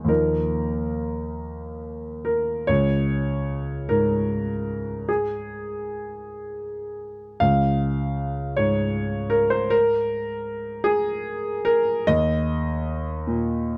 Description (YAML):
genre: neoclassical minimalist piano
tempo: 45-52 BPM (dotted quarters)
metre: 6/8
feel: rubato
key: unclear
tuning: A4 = 440 Hz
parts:
  - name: clear concert grand piano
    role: solo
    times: 0.0-13.8 s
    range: Db2 to F5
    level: -24 LUFS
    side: equal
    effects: none
room: little or no reverb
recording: close, detailed microphones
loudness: -24 LUFS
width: mono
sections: 0.0-2.7 A section; 2.7-13.8 A section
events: none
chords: 0.1 Ebsus2; 2.7 Db5; 12.1 Eb5